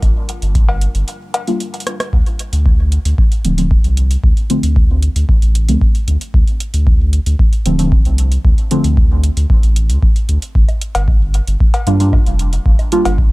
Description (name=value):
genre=dub techno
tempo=114 BPM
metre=4/4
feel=straight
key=D minor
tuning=A4 = 438 Hz
part: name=dark analog pad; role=sustained chords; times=0.0-2.1 s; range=G3 to Bb4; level=-37 LUFS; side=left 1 dB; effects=chorus, sidechain pumping
part: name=warm sub bass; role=bass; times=0.0-13.3 s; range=D1 to G2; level=-14 LUFS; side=equal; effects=tube saturation, sidechain pumping
part: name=booming analog drum machine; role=drums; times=0.0-13.2 s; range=hi-hat, rim click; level=-26 LUFS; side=right 2 dB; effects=none
part: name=electronic kick drum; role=drums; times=0.0-13.3 s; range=none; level=-13 LUFS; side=equal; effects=none
part: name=woodblock and cowbell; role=percussion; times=0.0-2.1, 10.7-13.2 s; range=none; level=-23 LUFS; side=left 2 dB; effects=sidechain pumping on perc, dub echo
part: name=deep mellow chord stab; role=stabs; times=1.5-13.1 s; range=D3 to F4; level=-18 LUFS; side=equal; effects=chorus, phaser, dub echo
room=little or no reverb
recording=dry, gritty hardware recording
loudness=-11 LUFS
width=side -21 dB against mid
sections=0.0-2.1 A section; 2.1-13.3 A section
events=break 1.1-2.1; drum fill 1.9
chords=0.0 Gm7; 2.1 Dm7; 10.6 Gm7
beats=| 0.03 0.55 1.08 1.60 | 2.13 2.66 3.18 3.71 | 4.24 4.76 5.29 5.82 | 6.34 6.87 7.39 7.92 | 8.45 8.97 9.50 10.03 | 10.55 11.08 11.60 12.13 | 12.66 13.18